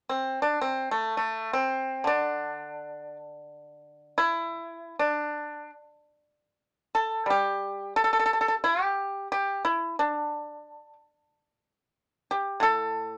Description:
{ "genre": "chinese traditional, Chinese solo plucked strings", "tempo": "68-92 BPM", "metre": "4/4", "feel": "rubato", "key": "D shang mode", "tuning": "A4 = 445 Hz", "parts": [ { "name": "pipa", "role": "solo", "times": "0.1-13.2 s", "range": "A2 to A4", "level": "-28 LUFS", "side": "equal", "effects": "none" } ], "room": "light reverb", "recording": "none", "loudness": "-28 LUFS", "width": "mono", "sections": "0.0-5.9 A section; 5.9-13.2 B section", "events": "none", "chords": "none", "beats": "0.07 0.89 1.71 | 2.53 3.37 4.23 5.09 | 5.88 6.58 7.27 7.95 | 8.63 9.31 9.97 10.63 | 11.28 11.95 12.61" }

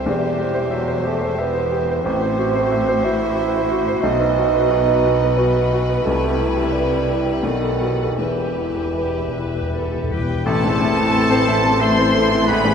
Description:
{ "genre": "classical, romantic movement for piano and orchestra", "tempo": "76-95 BPM", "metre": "3/4", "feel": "rubato", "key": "E minor", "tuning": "A4 = 440 Hz", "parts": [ { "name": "clear grand piano", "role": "melody", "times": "0.0-12.7 s", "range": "A1 to A5", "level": "-21 LUFS", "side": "left 2 dB", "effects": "none" }, { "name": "rich studio violin section", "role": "melody", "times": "0.0-12.7 s", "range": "D#5 to C6", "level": "-28 LUFS", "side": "right 2 dB", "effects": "none" }, { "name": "rich chamber violin section", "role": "second line", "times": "0.0-12.7 s", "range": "A3 to C5", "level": "-28 LUFS", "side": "left 1 dB", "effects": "none" }, { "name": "rich chamber viola section", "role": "accompaniment", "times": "0.0-12.7 s", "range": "D3 to B4", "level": "-28 LUFS", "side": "left 2 dB", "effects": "none" }, { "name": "rich chamber cello section", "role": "bass", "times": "0.0-12.7 s", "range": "E2 to C3", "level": "-28 LUFS", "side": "left 2 dB", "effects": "none" }, { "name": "rich chamber double bass section", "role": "bass", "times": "0.0-12.7 s", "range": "E1 to C2", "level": "-27 LUFS", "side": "equal", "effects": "none" }, { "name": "mellow bassoon", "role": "accompaniment", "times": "0.1-12.7 s", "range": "D#3 to E4", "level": "-22 LUFS", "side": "right 5 dB", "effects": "none" }, { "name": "timpani", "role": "percussion", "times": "4.0-5.0, 8.2-10.4 s", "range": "E2 to B2", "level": "-29 LUFS", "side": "left 1 dB", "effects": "none" }, { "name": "bright clarinet", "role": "second line", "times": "10.1-12.7 s", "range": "G4 to C5", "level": "-26 LUFS", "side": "right 4 dB", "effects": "none" }, { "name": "clear oboe", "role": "second line", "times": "10.1-12.7 s", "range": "G4 to C5", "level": "-27 LUFS", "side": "left 3 dB", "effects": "none" }, { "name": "mellow wooden flute", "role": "second line", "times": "10.5-12.7 s", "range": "G#5 to C6", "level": "-27 LUFS", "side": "left 2 dB", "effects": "none" }, { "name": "mellow French horn section", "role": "sustained chords", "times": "10.5-12.7 s", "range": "G#3 to E4", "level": "-26 LUFS", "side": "left 1 dB", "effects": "none" } ], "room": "wet cathedral reverb, RT60 5.7 s", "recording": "in a vast, echoing space", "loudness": "-16 LUFS", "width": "side -7 dB against mid", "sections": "0.0-10.5 A section; 10.5-12.7 B section", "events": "timpani fill 8.2-10.5", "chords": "0.1 C/E; 2.0 F#m7b5/A; 4.0 B; 6.1 Cmaj7; 7.4 B7; 8.2 Em; 10.5 Am", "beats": "| 0.09 0.72 1.38 | 2.04 2.70 3.37 | 4.03 4.70 5.38 | 6.06 6.74 7.45 | 8.19 8.97 9.73 | 10.46 11.14 11.82 | 12.48" }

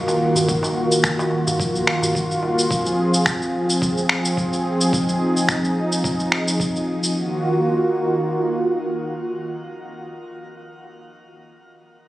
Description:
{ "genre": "organic downtempo", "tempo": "108 BPM", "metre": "4/4", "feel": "swing 54% on 16ths", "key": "unclear", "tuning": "A4 = 443 Hz", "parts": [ { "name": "warm analog pad", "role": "sustained chords", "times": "0.0-10.1 s", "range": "Eb3 to Ab4", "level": "-20 LUFS", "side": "equal", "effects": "chorus, sidechain pumping, shimmer reverb" }, { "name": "warm sub bass", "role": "bass", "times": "0.1-2.7 s", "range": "Eb1 to Bb1", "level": "-34 LUFS", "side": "equal", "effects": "tube saturation, sidechain pumping" }, { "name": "electronic shaker and finger snaps", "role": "drums", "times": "0.1-7.1 s", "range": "none", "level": "-23 LUFS", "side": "equal", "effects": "overdrive" }, { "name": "darbuka", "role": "percussion", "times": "0.1-2.5 s", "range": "none", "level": "-32 LUFS", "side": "equal", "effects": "none" }, { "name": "electronic kick drum", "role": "drums", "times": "0.5-6.7 s", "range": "none", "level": "-27 LUFS", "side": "equal", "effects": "overdrive" } ], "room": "moderate huge ambient reverb, RT60 7.3 s", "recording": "recorded on a phone in the room, studio reverb, compression", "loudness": "-18 LUFS", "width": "side -16 dB against mid", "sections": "0.0-7.1 A section; 7.1-9.4 B section", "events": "none", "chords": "0.0 Ebm; 2.7 Fm7; 7.1 Ebm", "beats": "| 0.48 1.04 1.59 2.15 | 2.70 3.26 3.81 4.37 | 4.93 5.48 6.04 6.59 | 7.15 7.70 8.26 8.81" }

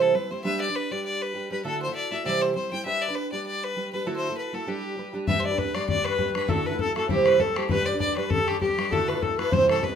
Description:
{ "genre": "celtic folk, Celtic reel", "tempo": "198 BPM", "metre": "4/4", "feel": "swing 55% on 8ths", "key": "G major", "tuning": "A4 = 441 Hz", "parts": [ { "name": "rich fiddle", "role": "melody", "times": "0.0-10.0 s", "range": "G4 to G5", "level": "-28 LUFS", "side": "left 3 dB", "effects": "none" }, { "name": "fingerpicked twelve-string acoustic guitar", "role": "accompaniment", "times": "0.0-10.0 s", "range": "C3 to C5", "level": "-26 LUFS", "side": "right 4 dB", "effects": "none" }, { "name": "mellow baroque flute", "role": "second line", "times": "5.3-10.0 s", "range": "G4 to E5", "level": "-29 LUFS", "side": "left 6 dB", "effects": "none" }, { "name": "bodhran", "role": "percussion", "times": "5.3-9.9 s", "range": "none", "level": "-29 LUFS", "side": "left 4 dB", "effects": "none" } ], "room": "moderate studio reverb, RT60 0.5 s", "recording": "minimal, uncompressed stereo recording", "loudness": "-23 LUFS", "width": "side -8 dB against mid", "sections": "0.0-5.3 A section; 5.3-10.0 A section", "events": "none", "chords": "0.4 G; 1.6 Dadd9; 2.3 C; 2.9 G; 4.1 Dadd9; 4.7 G; 6.5 Dadd9; 7.1 C; 7.7 G; 8.9 Dadd9", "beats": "0.14 | 0.44 0.74 1.04 1.34 | 1.65 1.95 2.25 2.55 | 2.86 3.16 3.46 3.77 | 4.07 4.37 4.67 4.98 | 5.28 5.58 5.89 6.19 | 6.49 6.80 7.10 7.40 | 7.71 8.01 8.31 8.62 | 8.92 9.22 9.53 9.83" }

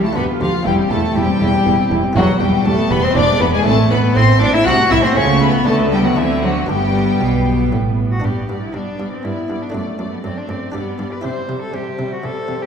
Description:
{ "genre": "classical, baroque-style concerto movement with solo episodes", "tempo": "120 BPM", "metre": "3/4", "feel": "straight", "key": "G major", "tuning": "A4 = 440 Hz", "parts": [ { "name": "rich cello", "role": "melody", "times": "0.0-12.7 s", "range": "E3 to C5", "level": "-19 LUFS", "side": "left 1 dB", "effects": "none" }, { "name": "rich chamber violin section", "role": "melody", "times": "0.0-12.7 s", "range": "D5 to F#6", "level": "-25 LUFS", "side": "left 5 dB", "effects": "none" }, { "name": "dark studio violin section", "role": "second line", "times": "0.0-12.7 s", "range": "E4 to F#5", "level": "-22 LUFS", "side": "left 3 dB", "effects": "none" }, { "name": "buff-stop harpsichord", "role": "accompaniment", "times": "0.0-12.7 s", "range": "C2 to G4", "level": "-26 LUFS", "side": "equal", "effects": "none" }, { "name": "dark chamber viola section", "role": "accompaniment", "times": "0.0-12.7 s", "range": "G3 to G4", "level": "-24 LUFS", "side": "equal", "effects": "none" }, { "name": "rich studio cello section", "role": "bass", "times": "0.2-12.6 s", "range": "D2 to D3", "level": "-22 LUFS", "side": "right 2 dB", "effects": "none" }, { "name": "warm studio double bass section", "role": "bass", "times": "0.2-8.2 s", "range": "E1 to D2", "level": "-20 LUFS", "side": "right 3 dB", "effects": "none" } ], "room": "wet concert hall reverb, RT60 2.2 s", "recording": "heard from further back in the room", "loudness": "-14 LUFS", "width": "side -7 dB against mid", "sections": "0.0-8.2 A section; 8.2-12.7 B section", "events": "none", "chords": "0.2 G7/D; 0.7 C/E; 2.2 Em; 3.2 E7; 3.7 Am; 4.7 Am/C; 5.2 A/C#; 5.7 Gmaj9/D; 6.2 D7; 6.7 G; 9.7 D/F#; 10.7 G; 11.2 C", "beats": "0.16 | 0.66 1.16 1.66 | 2.16 2.65 3.15 | 3.66 4.16 4.66 | 5.16 5.67 6.18 | 6.69 7.21 7.73 | 8.24 8.74 9.25 | 9.75 10.25 10.74 | 11.25 11.75 12.24" }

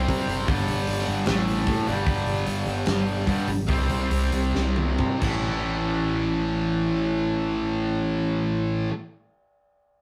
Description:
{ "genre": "hard rock", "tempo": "128-151 BPM", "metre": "4/4", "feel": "straight", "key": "A minor", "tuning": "A4 = 441 Hz", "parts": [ { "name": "high-gain distorted guitar", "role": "riff", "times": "0.0-8.9 s", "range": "G2 to C4", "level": "-35 LUFS", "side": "equal", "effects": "distortion" }, { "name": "high-gain distorted guitar", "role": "riff", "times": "0.0-8.9 s", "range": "G2 to C4", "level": "-28 LUFS", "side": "equal", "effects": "distortion" }, { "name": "growling picked electric bass", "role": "bass", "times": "0.0-8.9 s", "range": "F#1 to C3", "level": "-30 LUFS", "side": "equal", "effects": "overdrive" }, { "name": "big rock drum kit", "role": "drums", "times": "0.1-5.3 s", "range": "crash cymbal, hi-hat, kick drum, snare drum, toms", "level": "-31 LUFS", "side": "equal", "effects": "none" } ], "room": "wet studio reverb, RT60 0.6 s", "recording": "rough rehearsal-room recording, tube saturation", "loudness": "-25 LUFS", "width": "mono", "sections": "0.0-5.5 A section; 5.5-9.2 B section", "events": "slowing down 2.1-5.5; drum fill 4.5-5.5", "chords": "0.5 G5; 1.3 A5; 1.9 G5; 3.7 C5; 5.2 A5", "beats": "0.08 | 0.47 0.87 1.27 1.67 | 2.06 2.46 2.87 3.27 | 3.69 4.11 4.55 4.99 | 5.45 5.92 6.39 6.86 | 7.33 7.80 8.27 8.74" }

